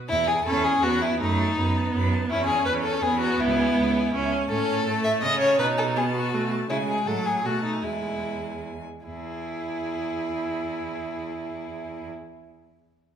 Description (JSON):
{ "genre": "quick classical-period movement for string quartet", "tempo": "143-165 BPM", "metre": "3/4", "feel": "straight", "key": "E major", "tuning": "A4 = 440 Hz", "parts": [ { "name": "clear violin", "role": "melody", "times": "0.1-12.1 s", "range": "G#4 to B5", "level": "-35 LUFS", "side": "left 8 dB", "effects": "none" }, { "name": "rich violin", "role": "second line", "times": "0.1-12.1 s", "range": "D#4 to E5", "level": "-26 LUFS", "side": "left 2 dB", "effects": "none" }, { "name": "rich cello", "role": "bass", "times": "0.1-12.1 s", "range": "C#2 to C#3", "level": "-30 LUFS", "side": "right 4 dB", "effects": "none" }, { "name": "clear viola", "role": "accompaniment", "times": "0.5-12.1 s", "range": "F#3 to E4", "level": "-28 LUFS", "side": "right 2 dB", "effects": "none" } ], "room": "wet recital hall reverb, RT60 1.6 s", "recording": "minimal, uncompressed stereo recording", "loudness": "-22 LUFS", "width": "side -8 dB against mid", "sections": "0.1-9.1 A section; 9.1-11.5 B section", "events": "slowing down 6.1-9.1", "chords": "0.1 E; 1.2 B7/F#; 2.3 E; 3.4 C#m; 4.5 A; 5.6 B7; 6.7 C#5; 7.1 F#m/A; 7.4 B7; 7.8 E", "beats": "| 0.09 0.46 0.83 | 1.20 1.57 1.94 | 2.30 2.66 3.03 | 3.40 3.77 4.13 | 4.50 4.87 5.23 | 5.59 5.96 6.32 | 6.69 7.06 7.44 | 7.83 8.23 8.64 | 9.06 9.47 9.88 | 10.29 10.70 11.11" }